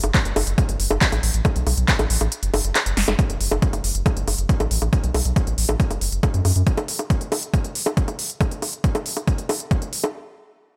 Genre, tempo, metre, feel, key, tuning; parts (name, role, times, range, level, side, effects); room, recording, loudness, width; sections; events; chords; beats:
psychedelic trance; 138 BPM; 4/4; straight; F# phrygian; A4 = 440 Hz
round analog bass; bass; 0.0-6.6 s; F#1 to F#2; -24 LUFS; equal; tube saturation
big-room dance drum kit; drums; 0.0-10.1 s; bongos, handclaps, hi-hat, snare drum; -26 LUFS; equal; overdrive
electronic kick drum; drums; 0.1-9.8 s; -23 LUFS; equal; overdrive
little or no reverb; -21 LUFS; mono
0.0-3.2 A section; 3.2-10.1 B section
drop 0.0-3.2; kick drops out 2.3-3.2; drum fill 3.0
0.14 0.58 1.01 | 1.45 1.88 2.32 2.75 | 3.19 3.62 4.06 4.49 | 4.93 5.36 5.80 6.23 | 6.67 7.10 7.54 7.97 | 8.40 8.84 9.28 9.71